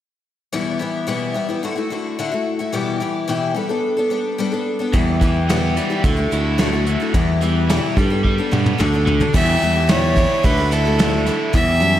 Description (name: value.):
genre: folk rock and heartland rock.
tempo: 109 BPM.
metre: 4/4.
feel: straight.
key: E minor.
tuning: A4 = 438 Hz.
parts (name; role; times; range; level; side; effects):
picked twelve-string acoustic guitar; accompaniment; 0.5-12.0 s; E2 to A4; -21 LUFS; left 3 dB; slapback echo.
overdriven electric guitar; riff; 4.9-12.0 s; E2 to E4; -23 LUFS; right 2 dB; none.
modern bright fingered electric bass; bass; 4.9-12.0 s; D2 to G2; -20 LUFS; equal; none.
soft brush drum kit; drums; 4.9-11.9 s; crash cymbal, hi-hat, kick drum, snare drum, toms; -20 LUFS; equal; none.
clear fiddle; melody; 9.3-12.0 s; A4 to E5; -19 LUFS; right 1 dB; slapback echo, analog delay.
room: moderate lush hall reverb, RT60 1.7 s, small room reverb.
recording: big arena sound.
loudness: -16 LUFS.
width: side -12 dB against mid.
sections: 0.5-9.3 A section; 9.3-12.0 B section.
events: drum fill 8.2-9.3.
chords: 0.5 Em; 1.6 Dadd9; 2.7 Em; 3.6 Gadd9; 4.9 Em; 6.0 Dadd9; 7.1 Em; 8.0 Gadd9; 8.8 D; 9.3 Em; 10.4 Dadd9.